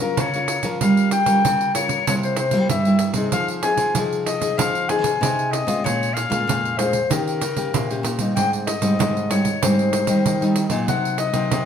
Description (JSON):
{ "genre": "samba and choro", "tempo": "95 BPM", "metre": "4/4", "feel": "straight", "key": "F minor", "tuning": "A4 = 444 Hz", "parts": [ { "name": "warm clarinet", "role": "second line", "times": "0.0-11.7 s", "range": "Bb4 to Ab5", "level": "-22 LUFS", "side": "left 4 dB", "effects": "none" }, { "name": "nylon-string guitar", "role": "accompaniment", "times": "0.0-11.7 s", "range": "F2 to Bb4", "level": "-23 LUFS", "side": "left 1 dB", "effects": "none" }, { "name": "nylon-string guitar", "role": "bass", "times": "0.0-11.7 s", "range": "Ab2 to G3", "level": "-25 LUFS", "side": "right 2 dB", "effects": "none" }, { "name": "pandeiro", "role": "percussion", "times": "0.2-11.7 s", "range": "none", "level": "-25 LUFS", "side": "right 5 dB", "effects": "none" } ], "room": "wet stone room reverb, RT60 1.1 s", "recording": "band playing live in one room", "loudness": "-18 LUFS", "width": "side -8 dB against mid", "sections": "0.0-11.7 A section", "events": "clarinet solo 0.0-11.7", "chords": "0.0 Gbmaj7; 0.8 Gm7b5; 2.1 C7; 3.3 Fm7; 5.8 Bbm7; 7.1 Eb7; 8.4 Abmaj7; 10.9 Cm7b5", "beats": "0.19 | 0.81 1.44 2.07 2.70 | 3.33 3.96 4.59 5.22 | 5.85 6.48 7.11 7.74 | 8.37 8.99 9.62 10.25 | 10.88 11.51" }